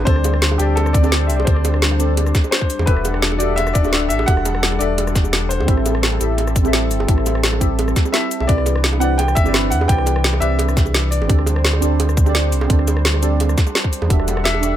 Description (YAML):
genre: liquid drum and bass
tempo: 171 BPM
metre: 4/4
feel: straight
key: unclear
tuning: A4 = 441 Hz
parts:
  - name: clear baby grand piano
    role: melody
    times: 0.0-11.8, 14.4-14.8 s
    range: G4 to G5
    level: -24 LUFS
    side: left 2 dB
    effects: dub echo
  - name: deep mellow chord stab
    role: accompaniment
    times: 0.0-14.8 s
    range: C4 to E5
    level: -23 LUFS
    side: right 1 dB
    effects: chorus
  - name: warm analog pad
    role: sustained chords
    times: 0.0-14.8 s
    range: E3 to F#5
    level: -26 LUFS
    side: left 2 dB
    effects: chorus, sidechain pumping
  - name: sub bass with octave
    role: bass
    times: 0.0-14.8 s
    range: D1 to E2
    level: -19 LUFS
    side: equal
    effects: none
  - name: electronic kick drum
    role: drums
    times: 0.1-14.2 s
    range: none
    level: -16 LUFS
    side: equal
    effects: overdrive
  - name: garage drum kit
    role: drums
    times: 0.1-14.7 s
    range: hi-hat, rim click, shaker, snare drum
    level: -22 LUFS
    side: equal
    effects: none
  - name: bongos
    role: percussion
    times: 0.2-14.6 s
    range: none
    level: -28 LUFS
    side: right 5 dB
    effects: none
room: little or no reverb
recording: none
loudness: -14 LUFS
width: side -11 dB against mid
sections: 0.0-14.8 A section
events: none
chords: 0.1 D7sus4; 2.9 Em11; 5.7 Am7; 8.5 Cmaj9; 11.3 D7sus4; 14.1 Em11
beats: | 0.07 0.42 0.77 1.12 | 1.47 1.82 2.17 2.52 | 2.88 3.23 3.58 3.93 | 4.28 4.63 4.98 5.33 | 5.68 6.03 6.38 6.73 | 7.08 7.44 7.79 8.14 | 8.49 8.84 9.19 9.54 | 9.89 10.24 10.59 10.95 | 11.30 11.65 12.00 12.35 | 12.70 13.05 13.40 13.75 | 14.10 14.45